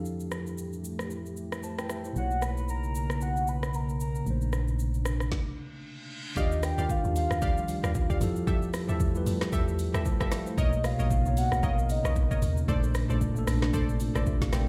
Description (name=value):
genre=amapiano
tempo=114 BPM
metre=4/4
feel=swing 58% on 16ths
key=Eb lydian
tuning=A4 = 441 Hz
part: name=mellow tine electric piano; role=accompaniment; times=0.0-14.7 s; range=Bb2 to A5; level=-35 LUFS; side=equal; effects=none
part: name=deep dark ambient pad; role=sustained chords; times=0.0-14.7 s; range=C3 to A#4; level=-40 LUFS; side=equal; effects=chorus, built-in reverb, sidechain pumping
part: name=solid FM bass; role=bass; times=0.0-5.3 s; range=Bb1 to F2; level=-35 LUFS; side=equal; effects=none
part: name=afro-pop drum kit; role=drums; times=0.1-14.7 s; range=hi-hat, kick drum, rim click, shaker, snare drum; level=-34 LUFS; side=equal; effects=none
part: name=soft octave-layered synth lead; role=melody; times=2.2-12.6 s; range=Eb5 to B5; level=-36 LUFS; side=equal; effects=chorus, phaser, delay
part: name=reverse cymbal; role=sound effects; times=5.5-6.4 s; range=none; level=-46 LUFS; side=equal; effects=none
part: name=analog pluck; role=stabs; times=6.4-14.2 s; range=G4 to F5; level=-41 LUFS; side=equal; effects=chorus, delay
part: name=deep log drum bass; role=bass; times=6.4-14.7 s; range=A1 to F2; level=-32 LUFS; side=equal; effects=none
room=little or no reverb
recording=played on a big sound system in a bare room, stone room reverb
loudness=-29 LUFS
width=mono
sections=0.0-6.4 A section; 6.4-14.7 B section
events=stop 5.3-6.4; reverse cymbal 5.6-6.4; drop 6.4-14.7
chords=0.0 Fmaj9; 2.2 Bmaj9; 4.3 Bbmaj9; 6.4 Ebmaj9; 8.2 Fmaj9; 10.6 Bmaj9; 12.7 Bbmaj9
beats=| 0.05 0.58 1.11 1.63 | 2.16 2.69 3.21 3.74 | 4.26 4.79 5.32 5.84 | 6.37 6.89 7.42 7.95 | 8.47 9.00 9.53 10.05 | 10.58 11.11 11.63 12.16 | 12.69 13.21 13.74 14.26